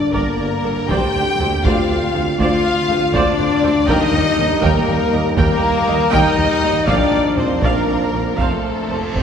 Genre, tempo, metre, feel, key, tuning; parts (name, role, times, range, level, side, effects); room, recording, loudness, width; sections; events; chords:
cinematic, epic orchestral film score; 80 BPM (dotted quarters); 12/8; straight; A4 = 440 Hz
warm symphonic violin section; melody; 0.0-9.2 s; A4 to G5; -25 LUFS; left 4 dB
warm symphonic violin section; second line; 0.0-9.2 s; A4 to G5; -24 LUFS; left 1 dB
mellow trombone section; sustained chords; 0.0-9.2 s; D3 to D4; -26 LUFS; right 2 dB
warm French horn section; sustained chords; 0.0-9.2 s; A3 to G4; -19 LUFS; left 3 dB
warm symphonic viola section; accompaniment; 0.1-9.2 s; G4 to G5; -24 LUFS; right 2 dB
rich symphonic double bass section; bass; 0.1-9.2 s; F1 to Eb2; -27 LUFS; right 3 dB
warm symphonic cello section; bass; 0.1-9.2 s; D2 to Bb2; -25 LUFS; right 2 dB
warm tuba; bass; 0.1-9.2 s; F1 to Eb2; -26 LUFS; right 2 dB
taiko ensemble; drums; 0.1-9.2 s; -24 LUFS; right 1 dB
reverse cymbal; sound effects; 8.7-9.2 s; -34 LUFS; right 1 dB
wet cathedral reverb, RT60 4.3 s; recorded in a church or concert hall; -14 LUFS; side -7 dB against mid
0.0-9.2 A section
reverse cymbal 8.7-9.2
0.0 Gm; 0.9 Dm7; 3.9 Eb; 6.9 Bb; 8.4 F